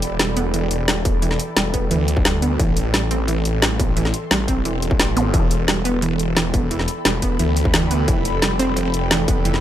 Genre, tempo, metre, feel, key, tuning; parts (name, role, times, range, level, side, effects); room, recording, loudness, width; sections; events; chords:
dark technical drum and bass; 175 BPM; 4/4; straight; E phrygian; A4 = 440 Hz
snarling distorted saw bass; bass; 0.0-9.6 s; E1 to D2; -22 LUFS; equal; overdrive, sidechain pumping
drum and bass drum kit; drums; 0.0-9.6 s; hi-hat, snare drum; -20 LUFS; left 1 dB; overdrive
ethereal airy pad; texture; 0.0-9.6 s; A4 to C6; -28 LUFS; equal; ensemble chorus, built-in reverb, sidechain pumping
wide unison pluck; arpeggios; 0.2-9.5 s; E3 to C4; -24 LUFS; right 3 dB; sidechain pumping, digital delay
electronic kick drum; drums; 1.1-9.3 s; -21 LUFS; equal; distortion
zap; sound effects; 5.2-5.3 s; -28 LUFS; left 1 dB
digital ambience; -17 LUFS; side -11 dB against mid
0.0-9.6 A section
filter sweep on synth arpeggio sound 0.0-9.6
0.0 Em; 2.6 Am; 5.3 Em; 8.1 Fsus2